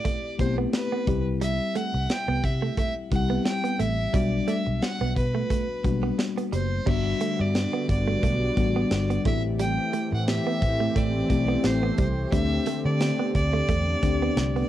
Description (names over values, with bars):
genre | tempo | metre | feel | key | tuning
1980s-style pop | 88 BPM | 4/4 | swing 55% on 16ths | unclear | A4 = 440 Hz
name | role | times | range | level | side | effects
clear fiddle | melody | 0.0-14.7 s | B4 to G5 | -30 LUFS | right 1 dB | cassette tape, analog delay
mellow FM electric piano | accompaniment | 0.0-14.7 s | G3 to G4 | -29 LUFS | left 6 dB | chorus, cassette tape
direct-recorded clean electric guitar | riff | 0.0-14.7 s | G3 to B3 | -31 LUFS | right 8 dB | wide subtle chorus, cassette tape, analog delay
modern studio drum kit | drums | 0.1-14.7 s | crash cymbal, hi-hat, kick drum, snare drum | -28 LUFS | equal | cassette tape
vintage muted fingered electric bass | bass | 0.4-14.6 s | F#1 to D3 | -27 LUFS | equal | none
warm analog pad | sustained chords | 6.9-14.7 s | D3 to G4 | -30 LUFS | equal | chorus, cassette tape
room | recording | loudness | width
moderate studio reverb, RT60 0.5 s | home recording on cassette | -22 LUFS | side -12 dB against mid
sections
0.0-6.9 A section; 6.9-14.7 B section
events
none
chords
0.0 Am7; 4.1 Gmaj7/B; 6.9 Gmaj7; 9.3 Am7; 12.3 D7sus4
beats
0.05 0.73 | 1.41 2.10 2.78 3.46 | 4.14 4.82 5.50 6.19 | 6.87 7.55 8.23 8.91 | 9.60 10.28 10.96 11.64 | 12.32 13.01 13.69 14.37